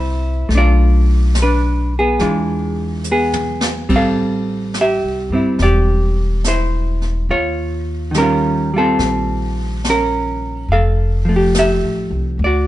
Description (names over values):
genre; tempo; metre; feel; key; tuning
jazz ballad; 71 BPM; 4/4; swing 69% on 8ths; F major; A4 = 436 Hz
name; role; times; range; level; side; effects
hollow-body jazz guitar; accompaniment; 0.0-12.7 s; D3 to F5; -17 LUFS; equal; none
upright bass; bass; 0.0-12.7 s; E1 to E2; -18 LUFS; equal; none
jazz brush drum kit; drums; 0.5-12.7 s; brushed snare drum, hi-hat, kick drum, ride cymbal, snare drum, toms; -25 LUFS; left 1 dB; none
room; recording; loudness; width
light reverb; band playing live in one room, nothing above 10.8 kHz; -14 LUFS; side -14 dB against mid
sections
0.0-12.7 A section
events
drum fill 3.0-3.9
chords
0.5 Bm7b5; 2.2 E7b9; 3.9 Am7; 7.3 Eb9; 10.7 Fmaj9